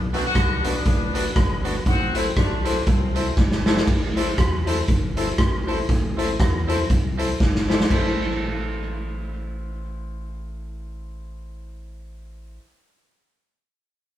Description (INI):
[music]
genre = ska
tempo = 119 BPM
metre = 4/4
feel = swing 58% on 8ths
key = A dorian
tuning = A4 = 440 Hz
[part]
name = fingered electric bass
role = bass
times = 0.0-12.6 s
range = G1 to E2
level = -28 LUFS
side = equal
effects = none
[part]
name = clear horn section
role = melody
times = 0.1-3.4 s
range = A3 to F#4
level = -27 LUFS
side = left 2 dB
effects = none
[part]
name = electric guitar at the edge of break-up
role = accompaniment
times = 0.1-12.6 s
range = B3 to A4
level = -32 LUFS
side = right 4 dB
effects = none
[part]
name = warm upright piano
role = stabs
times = 0.1-12.6 s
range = D4 to C5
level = -29 LUFS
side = left 4 dB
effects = none
[part]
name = raw garage drum kit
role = drums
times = 0.1-8.0 s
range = crash cymbal, hi-hat, kick drum, rim click, snare drum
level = -21 LUFS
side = equal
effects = none
[sound]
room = moderate studio reverb, RT60 0.6 s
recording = band playing live in one room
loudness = -19 LUFS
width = side -12 dB against mid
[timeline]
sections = 0.0-3.9 A section; 3.9-7.9 B section; 7.9-11.9 C section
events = drum fill 3.4-3.9, 7.4-7.9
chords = 0.0 Bm; 1.9 Am